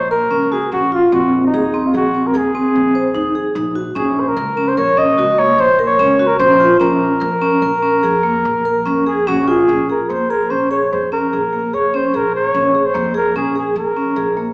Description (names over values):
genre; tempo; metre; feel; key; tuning
contemporary instrumental, chamber music in an uneven meter; 148 BPM; 7/4; straight; Bb minor; A4 = 440 Hz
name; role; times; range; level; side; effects
warm flugelhorn; melody; 0.0-14.5 s; Eb4 to Eb5; -15 LUFS; equal; none
vibraphone with medium mallets; arpeggios; 0.0-14.5 s; Bb3 to C5; -16 LUFS; equal; none
upright bass; bass; 0.0-14.5 s; Bb1 to F2; -27 LUFS; equal; none
room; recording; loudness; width
wet recital hall reverb, RT60 1.7 s; heard from further back in the room, small speaker sound; -13 LUFS; side -26 dB against mid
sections
0.0-9.7 A section; 9.7-14.5 B section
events
none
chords
0.0 Gbmaj7/Bb; 1.1 Ab7/Bb; 4.0 Gb/Bb (rootless); 6.8 Bbm; 9.7 Bbm7